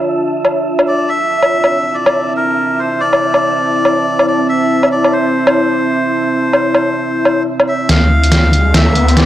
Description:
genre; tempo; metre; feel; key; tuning
deep dubstep; 141 BPM; 4/4; swing 61% on 16ths, half-time; unclear; A4 = 439 Hz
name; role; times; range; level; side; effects
deep dark ambient pad; sustained chords; 0.0-9.3 s; C4 to A5; -17 LUFS; equal; chorus, built-in reverb
wind-like tuned noise texture; texture; 0.0-7.9 s; E5; -24 LUFS; right 4 dB; built-in reverb
trip hop sampler-style drum kit; drums; 0.4-9.3 s; hi-hat, snare drum, woodblock; -14 LUFS; equal; overdrive
melodica; melody; 0.9-9.3 s; Bb4 to F5; -16 LUFS; equal; dub echo
deep soft wobble bass; bass; 7.9-9.3 s; D2; -11 LUFS; equal; chorus
riser; sound effects; 8.2-9.3 s; none; -18 LUFS; left 1 dB; none
room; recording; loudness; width
little or no reverb; dry, gritty hardware recording; -11 LUFS; side -13 dB against mid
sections
0.0-7.9 A section; 7.9-9.3 B section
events
build-up 7.9-9.3; drum fill 7.9-9.3; riser 8.2-9.3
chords
0.0 Dm; 1.1 Am; 7.9 Dm

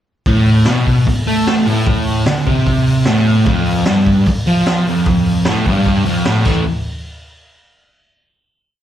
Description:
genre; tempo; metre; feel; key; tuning
garage rock duo or trio; 150 BPM; 4/4; straight; A minor; A4 = 439 Hz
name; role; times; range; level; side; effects
fuzz guitar; riff; 0.3-6.6 s; F2 to A3; -13 LUFS; equal; distortion
raw garage drum kit; drums; 0.3-6.6 s; crash cymbal, hi-hat, kick drum, snare drum; -17 LUFS; equal; none
room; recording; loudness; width
light reverb; live gig heard through the venue's PA, club reverb; -12 LUFS; side -11 dB against mid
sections
0.3-6.7 riff; 6.7-8.3 final hit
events
none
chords
0.3 Am; 3.5 Fadd9; 6.5 A5; 6.7 N.C.

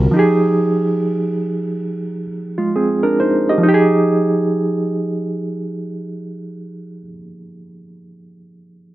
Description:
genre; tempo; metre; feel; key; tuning
R&B; 65-72 BPM; 4/4; swing 62% on 16ths; F minor; A4 = 440 Hz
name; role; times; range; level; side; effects
reed electric piano; accompaniment; 0.0-8.9 s; D3 to Eb5; -16 LUFS; right 1 dB; overdrive, fast tremolo
room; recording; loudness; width
light reverb; dry, close 1970s-style studio recording; -15 LUFS; side -15 dB against mid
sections
0.0-3.6 A section; 3.6-7.4 B section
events
slowing down 0.0-3.6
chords
0.1 Fm9

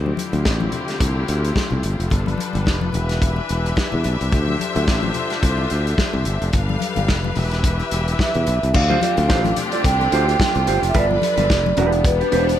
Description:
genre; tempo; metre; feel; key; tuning
disco; 109 BPM; 4/4; swing 56% on 16ths; D dorian; A4 = 440 Hz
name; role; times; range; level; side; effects
clear studio string section; sustained chords; 0.0-12.6 s; D3 to F5; -25 LUFS; left 3 dB; none
modern bright fingered electric bass; bass; 0.0-12.5 s; E1 to E2; -21 LUFS; equal; none
congas; percussion; 0.1-12.2 s; none; -29 LUFS; left 7 dB; none
warm soul drum kit; drums; 0.2-12.6 s; crash cymbal, hi-hat, kick drum, snare drum; -22 LUFS; equal; none
vibraphone with soft mallets; melody; 8.2-12.6 s; B4 to G5; -20 LUFS; right 2 dB; none
mellow electric guitar; accompaniment; 8.8-12.5 s; D4 to D5; -24 LUFS; right 4 dB; none
room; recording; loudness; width
small room ambience; none; -17 LUFS; side -11 dB against mid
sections
0.0-8.7 A section; 8.7-12.6 B section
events
none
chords
0.0 Dm11; 2.1 G9; 2.9 Em7; 4.3 Dm11; 6.5 G9; 7.4 Em7; 8.7 Dm7; 10.9 G9; 11.8 Em7

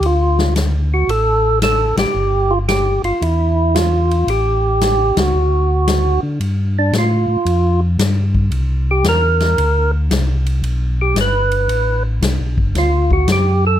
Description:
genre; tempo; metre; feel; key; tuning
soul jazz organ trio; 113 BPM; 4/4; swing 67% on 8ths; G mixolydian; A4 = 440 Hz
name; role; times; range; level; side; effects
percussive tonewheel organ; melody; 0.0-13.8 s; D4 to B4; -16 LUFS; right 2 dB; slow rotary speaker, overdrive
mellow tonewheel organ; bass; 0.0-13.8 s; G1 to D3; -16 LUFS; equal; slow rotary speaker
swinging big-band drum kit; drums; 0.0-13.4 s; hi-hat, kick drum, ride cymbal, snare drum; -23 LUFS; left 3 dB; none
room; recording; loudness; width
light reverb; none; -14 LUFS; side -11 dB against mid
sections
0.0-6.4 A section; 6.4-13.8 B section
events
band accent 1.9, 5.1; tonewheel organ solo 6.4-13.8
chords
0.0 D5; 2.2 Fsus2/G; 3.2 N.C.; 4.3 A7; 5.3 D; 6.4 Gsus2; 8.5 C9; 10.6 Gadd9; 12.8 Dadd11

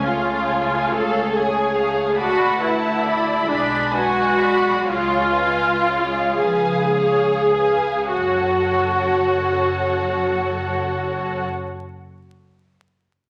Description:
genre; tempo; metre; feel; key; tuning
classical, slow romantic movement for string orchestra; 33-47 BPM (dotted quarters); 6/8; rubato; F# minor; A4 = 440 Hz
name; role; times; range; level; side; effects
warm symphonic violin section; melody; 0.0-11.4 s; E#5 to B5; -29 LUFS; equal; none
dark symphonic violin section; second line; 0.0-11.4 s; G#4 to F#5; -29 LUFS; equal; none
rich symphonic viola section; accompaniment; 0.0-11.4 s; D4 to A4; -22 LUFS; equal; none
rich symphonic cello section; bass; 0.0-11.4 s; F#2 to A3; -32 LUFS; equal; none
rich symphonic double bass section; bass; 0.0-11.4 s; F#1 to D2; -34 LUFS; equal; none
room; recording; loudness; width
wet recital hall reverb, RT60 1.3 s; vinyl crackle; -20 LUFS; mono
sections
0.0-8.1 A section; 8.1-11.5 B section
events
slowing down 0.9-8.1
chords
0.0 C#; 2.2 D6; 3.5 G#dim/B; 4.9 C#7; 8.1 F#m

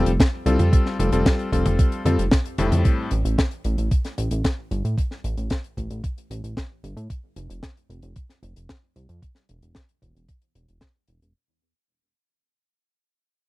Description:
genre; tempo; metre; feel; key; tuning
italo disco; 113 BPM; 4/4; straight; unclear; A4 = 440 Hz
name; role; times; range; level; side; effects
clear electric grand piano; stabs; 0.0-3.1 s; A2 to A4; -24 LUFS; left 2 dB; tape echo
chorused synth bass; bass; 0.0-11.3 s; E1 to A2; -23 LUFS; equal; none
tight funk drum kit; drums; 0.1-11.3 s; hi-hat, snare drum, toms; -25 LUFS; left 1 dB; none
electronic kick drum; drums; 0.2-10.9 s; none; -21 LUFS; equal; none
room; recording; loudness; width
little or no reverb; dry, close 1970s-style studio recording; -20 LUFS; side -20 dB against mid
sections
0.0-11.3 A section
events
fade-out 0.0-11.3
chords
0.0 Fadd9; 2.9 A7(no3); 7.1 F5; 9.2 N.C.

